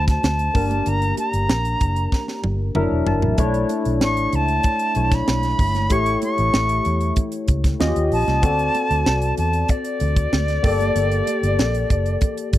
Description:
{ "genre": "polished 1980s jazz-funk pop", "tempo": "95 BPM", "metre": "4/4", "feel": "straight", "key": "D major", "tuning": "A4 = 436 Hz", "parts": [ { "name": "silver concert flute", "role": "melody", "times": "0.0-12.6 s", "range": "D5 to C#6", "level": "-23 LUFS", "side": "equal", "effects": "slapback echo" }, { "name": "barky tine electric piano", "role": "accompaniment", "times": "0.0-12.6 s", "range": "F#3 to A5", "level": "-24 LUFS", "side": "left 2 dB", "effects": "analog chorus" }, { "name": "vintage muted fingered electric bass", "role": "bass", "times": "0.0-12.6 s", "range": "E1 to E2", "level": "-22 LUFS", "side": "equal", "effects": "none" }, { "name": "tight funk drum kit", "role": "drums", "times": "0.1-12.6 s", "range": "hi-hat, kick drum, snare drum, toms", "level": "-22 LUFS", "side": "equal", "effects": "none" }, { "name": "congas", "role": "percussion", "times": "0.2-12.6 s", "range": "none", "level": "-34 LUFS", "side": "right 11 dB", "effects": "none" } ], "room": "small room ambience", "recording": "dry, close 1970s-style studio recording", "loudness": "-17 LUFS", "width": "side -14 dB against mid", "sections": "0.0-12.6 A section", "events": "drum fill 2.1-3.4; tine electric piano fill 2.4-3.4", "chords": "0.0 D7; 0.6 Gm; 2.8 F#7alt; 3.4 Bm11; 5.9 A7; 7.8 Eb9; 8.4 D7; 10.6 Gmadd9" }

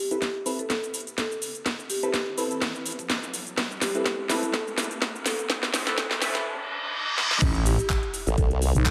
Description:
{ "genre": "bass house", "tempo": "125 BPM", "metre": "4/4", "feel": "swing 55% on 16ths", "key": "A minor", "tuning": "A4 = 440 Hz", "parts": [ { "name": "marimba with soft mallets", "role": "melody", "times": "0.0-8.9 s", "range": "G4 to A4", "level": "-35 LUFS", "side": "equal", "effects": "delay" }, { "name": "riser, reverse cymbal and sub drop", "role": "sound effects", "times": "0.0-8.9 s", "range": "none", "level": "-35 LUFS", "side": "equal", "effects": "none" }, { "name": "band-passed chord stab", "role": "stabs", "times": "0.1-6.5 s", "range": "C4 to B4", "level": "-35 LUFS", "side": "equal", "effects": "phaser, sidechain pumping, delay" }, { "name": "garage drum kit", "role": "drums", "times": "0.1-8.9 s", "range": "crash cymbal, handclaps, hi-hat, shaker, snare drum", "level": "-30 LUFS", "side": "equal", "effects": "none" }, { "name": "electronic kick drum", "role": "drums", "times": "0.2-8.9 s", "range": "none", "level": "-29 LUFS", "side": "equal", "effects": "high-pass filter on kick" }, { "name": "growling FM bass", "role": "bass", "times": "7.4-8.9 s", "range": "A1 to B1", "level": "-24 LUFS", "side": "equal", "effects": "overdrive, sidechain pumping" }, { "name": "formant-sweep wobble bass", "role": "bass", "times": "8.3-8.7 s", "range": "A1 to C2", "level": "-26 LUFS", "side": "equal", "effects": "chorus, sidechain pumping" } ], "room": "wet plate reverb, RT60 1.7 s, digital ambience", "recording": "dreamy mix soaked in reverb, high-pass filter", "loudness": "-27 LUFS", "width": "mono", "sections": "0.0-7.4 A section; 7.4-8.9 B section", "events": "build-up 0.0-7.4; drum fill 0.0-6.5, 7.2; riser 0.0-7.4; filter sweep on synth stab 0.0-7.4; reverse cymbal 6.5-7.4; drop 7.4-8.9; impact 7.4-8.9", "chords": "0.0 Amadd9" }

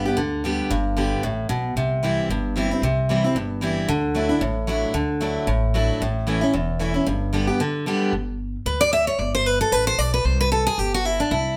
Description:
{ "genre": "bluegrass", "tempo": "226 BPM", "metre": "4/4", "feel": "swing 56% on 8ths", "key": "G major", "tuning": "A4 = 440 Hz", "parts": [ { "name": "picked steel-string acoustic guitar", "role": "accompaniment", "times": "0.0-11.6 s", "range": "E2 to E5", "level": "-23 LUFS", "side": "equal", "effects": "none" }, { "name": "upright bass", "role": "bass", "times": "0.0-11.6 s", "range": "E1 to D2", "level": "-28 LUFS", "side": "equal", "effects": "none" } ], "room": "moderate studio reverb, RT60 0.7 s", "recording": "band playing live in one room", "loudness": "-22 LUFS", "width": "mono", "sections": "0.0-8.1 A section; 8.1-11.6 B section", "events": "steel-string acoustic guitar solo 8.1-11.6", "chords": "0.0 G; 1.8 C; 3.9 Dadd9; 6.0 A; 7.1 G; 10.3 C" }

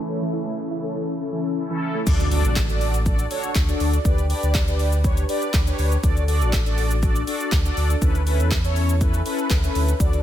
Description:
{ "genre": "dance-pop", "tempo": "121 BPM", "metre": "4/4", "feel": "straight", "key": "D major", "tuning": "A4 = 441 Hz", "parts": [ { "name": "supersaw pad", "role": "sustained chords", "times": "0.0-2.0, 10.0-10.2 s", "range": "C#3 to F#4", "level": "-31 LUFS", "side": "right 2 dB", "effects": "lush chorus, sidechain pumping" }, { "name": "soft round pluck", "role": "arpeggios", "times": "0.0-2.0 s", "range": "E3 to E4", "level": "-30 LUFS", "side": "right 5 dB", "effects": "chorus, sidechain pumping, diffuse ambient delay" }, { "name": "mellow synth brass", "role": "accompaniment", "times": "0.1-10.2 s", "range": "C#4 to D5", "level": "-26 LUFS", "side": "left 2 dB", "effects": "chorus, phaser, sidechain pumping" }, { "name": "sub bass with octave", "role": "bass", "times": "2.1-10.2 s", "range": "A1 to E2", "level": "-21 LUFS", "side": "equal", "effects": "sidechain pumping" }, { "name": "deep house drum kit", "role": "drums", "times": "2.1-10.2 s", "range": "crash cymbal, handclaps, hi-hat, kick drum, shaker, snare drum", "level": "-23 LUFS", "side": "equal", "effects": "none" }, { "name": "impact", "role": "sound effects", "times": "2.1-4.1 s", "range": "none", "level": "-32 LUFS", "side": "equal", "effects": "none" }, { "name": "group handclap", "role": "percussion", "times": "2.6-9.6 s", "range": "none", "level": "-40 LUFS", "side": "right 4 dB", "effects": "none" } ], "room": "light reverb", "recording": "low-pass filter", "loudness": "-19 LUFS", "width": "side -11 dB against mid", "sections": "0.0-2.1 A section; 2.1-10.2 B section", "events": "filter sweep 0.0-2.1; impact 2.1-4.1", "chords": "0.0 A; 2.1 D; 4.1 G/D; 6.0 D; 8.0 Aadd9/D" }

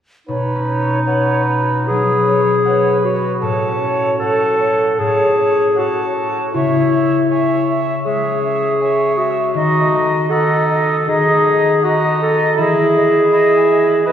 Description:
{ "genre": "cinematic", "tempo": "78 BPM", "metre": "4/4", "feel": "rubato", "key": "unclear", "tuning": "A4 = 439 Hz", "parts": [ { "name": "bright concert flute", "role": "second line", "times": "0.3-14.1 s", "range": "C#5 to E5", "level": "-21 LUFS", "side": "right 1 dB", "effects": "none" }, { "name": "mellow cor anglais", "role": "second line", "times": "0.3-14.1 s", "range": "D#4 to C#5", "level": "-21 LUFS", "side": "right 2 dB", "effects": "none" }, { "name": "warm clarinet", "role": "second line", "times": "0.3-14.1 s", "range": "D#4 to B4", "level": "-16 LUFS", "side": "left 1 dB", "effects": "none" }, { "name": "concert harp", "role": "arpeggios", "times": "0.3-14.1 s", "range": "A2 to D#6", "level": "-21 LUFS", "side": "left 1 dB", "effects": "none" } ], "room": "wet concert hall reverb, RT60 2.3 s", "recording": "heard from further back in the room", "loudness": "-13 LUFS", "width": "side -9 dB against mid", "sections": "0.3-14.1 A section", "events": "none", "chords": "0.3 Badd9; 3.4 F#m/A; 6.5 C#m; 9.5 D#dim; 12.6 Emaj7" }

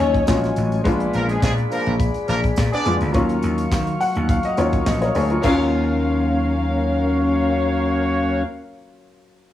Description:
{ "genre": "disco", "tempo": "105 BPM", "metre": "4/4", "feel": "straight", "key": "Eb minor", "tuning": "A4 = 440 Hz", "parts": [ { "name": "dark studio string section", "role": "second line", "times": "0.0-0.2, 5.4-8.4 s", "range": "Db4 to F5", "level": "-25 LUFS", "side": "left 4 dB", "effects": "none" }, { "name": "clear baby grand piano", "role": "accompaniment", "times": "0.0-9.5 s", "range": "Gb3 to Gb5", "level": "-24 LUFS", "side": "left 2 dB", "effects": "none" }, { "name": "mellow tonewheel organ", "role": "sustained chords", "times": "0.0-8.4 s", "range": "Gb3 to Db6", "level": "-24 LUFS", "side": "left 2 dB", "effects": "slow rotary speaker" }, { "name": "vintage slap bass", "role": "bass", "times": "0.0-8.4 s", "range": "A1 to Eb3", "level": "-22 LUFS", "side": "equal", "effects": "none" }, { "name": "tight funk drum kit", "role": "drums", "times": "0.1-5.6 s", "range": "crash cymbal, handclaps, hi-hat, kick drum, snare drum", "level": "-23 LUFS", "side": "equal", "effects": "none" }, { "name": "tambourine", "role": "percussion", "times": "0.3-5.7 s", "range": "none", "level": "-44 LUFS", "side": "right 4 dB", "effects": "none" }, { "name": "warm horn section", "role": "stabs", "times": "1.1-8.4 s", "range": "F3 to D5", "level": "-24 LUFS", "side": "equal", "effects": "none" } ], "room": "studio reverb", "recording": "home recording on cassette, small room ambience", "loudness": "-17 LUFS", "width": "side -12 dB against mid", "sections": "0.0-5.4 A section; 5.4-7.7 B section", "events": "grand piano fill 3.7-5.4", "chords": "0.0 Ebm11; 0.9 Bb7b9; 3.1 Ebm9" }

